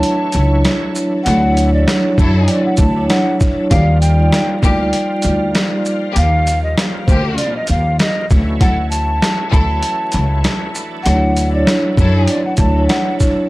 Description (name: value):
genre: hip hop, boom-bap hip-hop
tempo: 98 BPM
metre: 4/4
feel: swing 58% on 16ths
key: unclear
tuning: A4 = 441 Hz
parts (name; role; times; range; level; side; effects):
- mellow hollow jazz flute; melody; 0.0-13.2 s; C5 to A5; -21 LUFS; equal; high-pass filter, low-pass filter, analog delay
- vibraphone with soft mallets; accompaniment; 0.0-6.1, 11.0-13.5 s; F#3 to D5; -17 LUFS; right 1 dB; cassette tape, high-pass filter, low-pass filter
- bright tonewheel organ; sustained chords; 0.0-13.5 s; E3 to C#5; -28 LUFS; left 1 dB; overdrive, chorus vibrato, slow rotary speaker, high-pass filter, low-pass filter
- boom bap sampler-style drum kit; drums; 0.0-13.4 s; hi-hat, kick drum, shaker, snare drum; -16 LUFS; equal; none
- upright bass; bass; 0.3-12.9 s; C#2 to F#2; -15 LUFS; equal; none
- clear studio string section; stabs; 1.3-12.4 s; D3 to A4; -26 LUFS; left 2 dB; high-pass filter, low-pass filter, analog delay
room: studio reverb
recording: dry, gritty hardware recording, vinyl crackle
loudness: -12 LUFS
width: side -20 dB against mid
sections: 0.0-13.5 A section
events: none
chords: 0.0 Dmaj9; 3.7 Ebmaj9; 8.3 Dmaj9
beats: 0.03 0.65 | 1.26 1.87 2.48 3.10 | 3.71 4.32 4.93 5.54 | 6.16 6.77 7.38 7.99 | 8.61 9.22 9.83 10.44 | 11.05 11.67 12.28 12.89